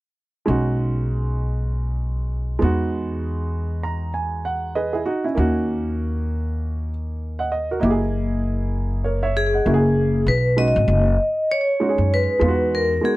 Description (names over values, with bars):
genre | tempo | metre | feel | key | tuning
hip hop, jazz-hop | 98 BPM | 4/4 | swing 60% on 16ths | B major | A4 = 440 Hz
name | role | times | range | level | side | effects
warm grand piano | accompaniment | 0.5-13.2 s | G#3 to A#5 | -24 LUFS | right 3 dB | none
upright bass | bass | 0.5-13.0 s | F#1 to F#2 | -22 LUFS | left 1 dB | none
vibraphone with medium hard mallets | melody | 9.4-13.2 s | G#4 to D#5 | -20 LUFS | left 1 dB | slapback echo
room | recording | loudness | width
light reverb | dry, close 1970s-style studio recording | -19 LUFS | side -18 dB against mid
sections
0.5-10.3 A section; 10.3-13.2 B section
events
grand piano fill 3.5-5.4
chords
0.5 B6; 2.6 Emaj9; 5.4 D#m7; 7.8 F#13; 9.7 F#9; 10.3 B6; 12.4 Emaj9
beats
| 0.47 1.08 1.70 2.31 | 2.92 3.53 4.14 4.76 | 5.37 5.98 6.59 7.21 | 7.82 8.43 9.04 9.66 | 10.27 10.88 11.49 12.11 | 12.72